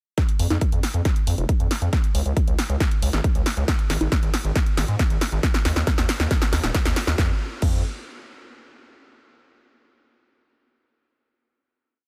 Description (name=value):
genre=uplifting trance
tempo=137 BPM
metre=4/4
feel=straight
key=unclear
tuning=A4 = 439 Hz
part: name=big-room dance drum kit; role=drums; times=0.2-7.7 s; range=congas, crash cymbal, hi-hat, snare drum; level=-29 LUFS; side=equal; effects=none
part: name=electronic kick drum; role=drums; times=0.2-7.7 s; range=none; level=-24 LUFS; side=equal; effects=none
part: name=gritty driven synth bass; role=bass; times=0.4-7.8 s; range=Eb1 to Ab2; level=-25 LUFS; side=equal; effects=sidechain pumping
room=digital ambience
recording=none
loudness=-22 LUFS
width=mono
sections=0.2-7.2 build; 7.2-8.9 final chord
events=build-up 0.2-7.2; drum fill 0.2-7.2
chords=none